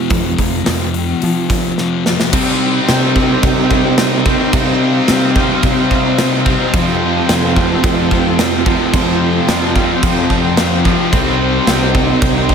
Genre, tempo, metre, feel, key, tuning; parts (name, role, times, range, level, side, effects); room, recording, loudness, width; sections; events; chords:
rock, shoegaze and dream pop; 109 BPM; 4/4; straight; F mixolydian; A4 = 437 Hz
electric guitar through a small old amp; riff; 0.0-12.5 s; C3 to G4; -22 LUFS; right 15 dB; reverse reverb
thick fuzz guitar; riff; 0.0-12.5 s; F2 to C4; -18 LUFS; left 11 dB; distortion, lush chorus
growling fingered electric bass; bass; 0.1-12.5 s; C2 to F3; -18 LUFS; right 1 dB; overdrive
gated 80s drum kit; drums; 0.1-12.5 s; crash cymbal, hi-hat, kick drum, snare drum; -17 LUFS; equal
sweeping resonant pad; sustained chords; 2.3-12.5 s; Eb4 to C6; -21 LUFS; right 2 dB; chorus
tight distorted guitar; riff; 2.3-12.5 s; F2 to C4; -18 LUFS; right 1 dB; distortion
small room ambience; -11 LUFS; side -6 dB against mid
0.0-2.3 A section; 2.3-12.5 B section
drum fill 1.8-2.3
0.0 Fadd9; 2.3 Cm; 6.7 Fadd9; 11.1 Cm